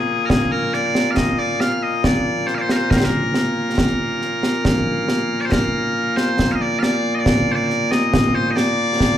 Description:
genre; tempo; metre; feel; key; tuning
scottish traditional, Scottish pipe music; 69 BPM; 3/4; straight; Bb major; A4 = 440 Hz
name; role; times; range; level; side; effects
loud bright bagpipes; melody; 0.0-9.2 s; Bb2 to F5; -19 LUFS; left 1 dB; slapback echo, plate reverb
concert snare drum and concert bass drum; drums; 0.3-9.2 s; none; -20 LUFS; equal; none
room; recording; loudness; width
wet club reverb, RT60 0.7 s; live gig heard through the venue's PA, club reverb; -16 LUFS; side -10 dB against mid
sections
0.0-5.5 A section; 5.5-9.2 B section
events
none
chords
none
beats
| 0.31 1.18 2.05 | 2.92 3.79 4.66 | 5.53 6.40 7.26 | 8.13 9.01

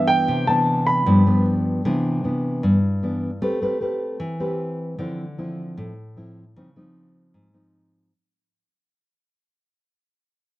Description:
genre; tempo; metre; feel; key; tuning
bossa nova; 153 BPM; 4/4; straight; C major; A4 = 440 Hz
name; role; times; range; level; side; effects
warm grand piano; melody; 0.0-1.4 s; G5 to B5; -20 LUFS; right 1 dB; none
nylon-string guitar; accompaniment; 0.0-8.1 s; G2 to B4; -20 LUFS; equal; none
room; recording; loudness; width
moderate echo chamber reverb, RT60 1.6 s; dark, warm production; -19 LUFS; side -16 dB against mid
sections
0.0-1.9 A section; 1.9-8.1 B section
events
fade-out 1.9-8.1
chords
0.0 Cmaj9; 1.1 G7; 1.9 Cmaj9; 3.4 Am9; 5.0 Dm9; 6.6 Dbmaj9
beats
| 0.28 0.67 1.07 1.46 | 1.85 2.24 2.63 3.03 | 3.42 3.81 4.20 4.60 | 4.99 5.38 5.77 6.17 | 6.56 6.95 7.34 7.74

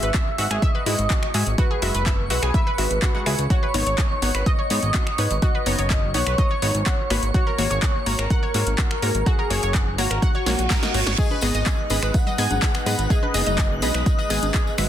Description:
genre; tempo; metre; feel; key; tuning
progressive house; 125 BPM; 4/4; straight; G# minor; A4 = 439 Hz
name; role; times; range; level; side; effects
expressive synth lead; melody; 0.0-14.9 s; F#4 to F#5; -28 LUFS; equal; ensemble chorus, ping-pong delay
analog pluck; arpeggios; 0.0-14.9 s; F#4 to A#6; -30 LUFS; equal; chorus, sidechain pumping, ping-pong delay
wide unison pluck; stabs; 0.0-14.9 s; G#3 to F#5; -29 LUFS; left 2 dB; sidechain pumping, ping-pong delay
fat analog bass; bass; 0.0-14.9 s; F#1 to G#2; -24 LUFS; equal; sidechain pumping
deep house drum kit; drums; 0.0-14.9 s; crash cymbal, finger snaps, handclaps, hi-hat, snare drum; -27 LUFS; equal; overdrive
twinkling granular texture; texture; 0.0-14.9 s; C#6 to F#6; -36 LUFS; right 2 dB; built-in reverb, sidechain pumping
electronic kick drum; drums; 0.1-14.6 s; none; -21 LUFS; equal; overdrive
reverse cymbal; sound effects; 10.4-11.2 s; none; -29 LUFS; right 6 dB; none
lush unison pad; sustained chords; 11.2-14.9 s; G#3 to D#4; -32 LUFS; right 2 dB; chorus, sidechain pumping
tambourine; percussion; 11.2-14.9 s; none; -34 LUFS; left 3 dB; none
congas; percussion; 11.3-14.9 s; none; -33 LUFS; left 4 dB; overdrive, sidechain pumping on perc
room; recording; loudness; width
light reverb, digital ambience; dense, heavily limited modern master; -19 LUFS; side -11 dB against mid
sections
0.0-14.9 A section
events
reverse cymbal 10.4-11.2; drum fill 10.5-11.2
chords
0.0 Eadd9/G#; 3.5 Badd9/G#; 7.3 F#/G#; 11.2 G#m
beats
0.14 0.62 1.10 | 1.58 2.06 2.54 3.02 | 3.50 3.98 4.46 4.94 | 5.42 5.90 6.38 6.86 | 7.34 7.82 8.30 8.78 | 9.26 9.74 10.22 10.70 | 11.18 11.66 12.14 12.62 | 13.10 13.58 14.06 14.54

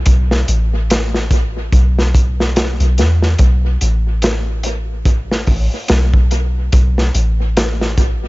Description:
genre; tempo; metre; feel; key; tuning
trip hop; 72 BPM; 4/4; swing 57% on 16ths; unclear; A4 = 442 Hz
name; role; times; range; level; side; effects
soft 808-style bass; bass; 0.0-8.3 s; A1 to E2; -15 LUFS; equal; tube saturation
crunchy breakbeat drum kit; drums; 0.1-8.2 s; hi-hat, kick drum, snare drum; -15 LUFS; equal; vintage 12-bit sampler grit, dub echo
room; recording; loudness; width
little or no reverb; echo-heavy mix, nothing above 7.7 kHz; -12 LUFS; side -21 dB against mid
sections
0.0-8.3 A section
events
none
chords
none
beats
| 0.06 0.90 1.73 2.56 | 3.40 4.23 5.06 5.90 | 6.73 7.56

